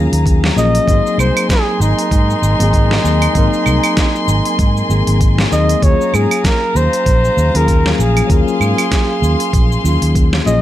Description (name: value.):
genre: sunset chillout.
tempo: 97 BPM.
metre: 4/4.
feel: swing 57% on 16ths.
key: Eb dorian.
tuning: A4 = 437 Hz.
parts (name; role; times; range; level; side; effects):
mellow flugelhorn; melody; 0.0-10.6 s; Eb4 to Eb5; -18 LUFS; right 1 dB; tape echo.
tine electric piano; accompaniment; 0.0-10.6 s; Gb3 to Bb4; -19 LUFS; moving between left 8 dB and right 4 dB; medium tremolo, auto-pan, vintage 12-bit sampler grit, tape echo.
dark chamber string section; sustained chords; 0.0-10.6 s; Ab4 to C6; -22 LUFS; left 3 dB; none.
fingered electric bass; bass; 0.0-10.6 s; Ab1 to Ab2; -14 LUFS; equal; none.
smooth R&B drum kit; drums; 0.1-10.6 s; cabasa, claves, hi-hat, snare drum; -20 LUFS; right 2 dB; none.
electronic kick drum; drums; 0.3-10.3 s; none; -14 LUFS; equal; none.
room: little or no reverb.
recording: none.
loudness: -11 LUFS.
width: side -13 dB against mid.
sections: 0.0-10.6 A section.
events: none.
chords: 0.0 Ebm11; 0.9 Ab9; 5.8 Ebm11.